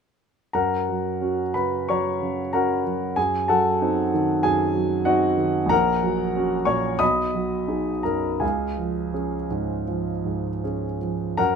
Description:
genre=classical, romantic character piece for solo piano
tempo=79-100 BPM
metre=4/4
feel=rubato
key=F# major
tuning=A4 = 440 Hz
part: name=warm concert grand piano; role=solo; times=0.5-11.6 s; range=A#1 to D#6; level=-21 LUFS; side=equal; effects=none
room=light reverb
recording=minimal, uncompressed stereo recording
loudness=-21 LUFS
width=side -6 dB against mid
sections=0.6-11.6 A section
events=none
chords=0.6 F#; 3.2 F#dim7; 5.7 F#/A#; 7.0 B6; 8.4 C#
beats=| 0.55 1.22 1.89 2.54 | 3.17 3.82 4.46 5.07 | 5.71 6.36 7.01 7.70 | 8.42 9.15 9.88 10.64 | 11.38

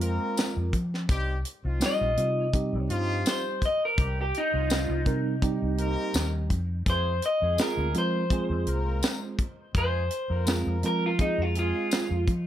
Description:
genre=straight-eighth soul blues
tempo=83 BPM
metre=4/4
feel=swing 54% on 16ths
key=C minor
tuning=A4 = 439 Hz
part: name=mellow tine electric piano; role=accompaniment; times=0.0-12.3 s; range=G3 to Bb4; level=-32 LUFS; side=right 3 dB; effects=phaser, plate reverb
part: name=warm horn section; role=sustained chords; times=0.0-12.1 s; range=F3 to Bb4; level=-36 LUFS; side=left 2 dB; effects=stereo widening, plate reverb
part: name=vintage muted fingered electric bass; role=bass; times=0.0-12.5 s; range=Bb1 to F3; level=-28 LUFS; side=equal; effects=none
part: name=tight funk drum kit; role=drums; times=0.0-12.5 s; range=hi-hat, kick drum, snare drum, tambourine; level=-28 LUFS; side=equal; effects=none
part: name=electric guitar through a small old amp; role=melody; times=1.9-12.3 s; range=Eb4 to Eb5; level=-29 LUFS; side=equal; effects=plate reverb
room=light reverb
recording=none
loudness=-24 LUFS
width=side -11 dB against mid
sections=0.0-12.5 A section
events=clean electric guitar solo 0.0-12.5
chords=0.0 Fm; 1.1 Cm; 6.9 Fm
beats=0.37 | 1.09 1.82 2.54 3.26 | 3.98 4.70 5.42 6.15 | 6.87 7.59 8.31 9.03 | 9.75 10.48 11.20 11.92

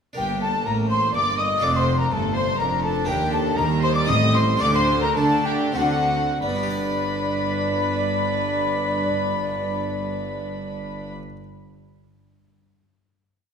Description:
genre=classical, baroque-style concerto movement with solo episodes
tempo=91-124 BPM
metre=3/4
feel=straight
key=unclear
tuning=A4 = 440 Hz
part: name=harpsichord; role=accompaniment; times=0.1-11.4 s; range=Eb2 to D5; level=-32 LUFS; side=right 1 dB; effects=none
part: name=baroque flute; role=melody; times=0.2-11.1 s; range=D5 to Eb6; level=-26 LUFS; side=left 1 dB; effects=none
part: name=dark chamber violin section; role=melody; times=0.2-11.1 s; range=F#5 to Eb6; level=-28 LUFS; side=left 3 dB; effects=none
part: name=warm chamber violin section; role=second line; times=0.2-11.1 s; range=F#4 to Eb5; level=-28 LUFS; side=left 4 dB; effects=none
part: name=dark chamber viola section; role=accompaniment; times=0.2-11.1 s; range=G3 to D4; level=-31 LUFS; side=left 1 dB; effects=none
part: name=dark chamber cello section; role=bass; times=0.2-11.1 s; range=Eb2 to D4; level=-28 LUFS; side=right 2 dB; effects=none
part: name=warm chamber double bass section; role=bass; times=0.2-11.1 s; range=F1 to D3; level=-28 LUFS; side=right 4 dB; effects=none
room=wet recital hall reverb, RT60 1.8 s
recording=minimal, uncompressed stereo recording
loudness=-20 LUFS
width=side -6 dB against mid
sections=0.2-6.4 ritornello; 6.4-10.4 final chord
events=slowing down 2.4-6.4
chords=0.2 Gm; 1.6 Dm/F; 3.1 Eb; 4.1 Am7b5; 4.6 Dsus4; 5.8 D7; 6.4 G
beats=| 0.17 0.66 1.15 | 1.63 2.12 2.60 | 3.08 3.58 4.09 | 4.62 5.17 5.77 | 6.42 7.08 7.74 | 8.39 9.05 9.71

